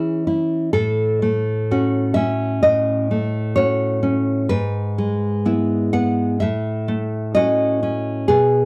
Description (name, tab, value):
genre	romantic piece for solo classical guitar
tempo	64 BPM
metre	4/4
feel	rubato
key	unclear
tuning	A4 = 437 Hz
part	nylon-string guitar	solo	0.0-8.7 s	G#2 to F#5	-20 LUFS	equal	none
room	light reverb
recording	dry, close 1970s-style studio recording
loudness	-20 LUFS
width	mono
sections	0.0-8.7 A section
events	none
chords	0.0 C#m/E; 0.7 F#m/A; 4.5 E/G#; 6.4 F#m/A